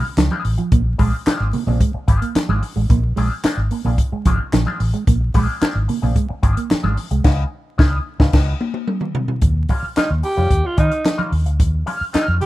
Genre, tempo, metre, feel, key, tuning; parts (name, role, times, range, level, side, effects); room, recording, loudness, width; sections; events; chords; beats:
funk; 110 BPM; 4/4; straight; Bb mixolydian; A4 = 440 Hz
electric guitar with an envelope filter; accompaniment; 0.0-12.4 s; F3 to Bb4; -27 LUFS; left 3 dB; wah
mellow electric guitar; riff; 0.2-7.2 s; F3 to Bb3; -25 LUFS; right 6 dB
vintage muted fingered electric bass; bass; 0.2-12.4 s; Ab1 to Eb3; -18 LUFS; equal
compact cocktail drum kit; drums; 0.2-12.5 s; crash cymbal, handclaps, hi-hat, kick drum, snare drum, toms; -18 LUFS; equal
congas; percussion; 0.2-12.5 s; -28 LUFS; right 3 dB
growling alto saxophone; melody; 10.0-12.5 s; Eb4 to G4; -21 LUFS; right 1 dB
studio ambience; rough home demo mix, vinyl crackle; -16 LUFS; side -16 dB against mid
0.0-9.4 A section; 9.4-12.5 B section
band accent 7.2-9.4; drum fill 8.3-9.4
0.0 Db9; 0.7 Bb9; 7.2 Db9; 9.4 Eb9
0.18 | 0.72 1.27 1.81 2.36 | 2.90 3.44 3.99 4.53 | 5.08 5.62 6.16 6.71 | 7.25 7.79 8.34 8.88 | 9.42 9.97 10.51 11.05 | 11.60 12.14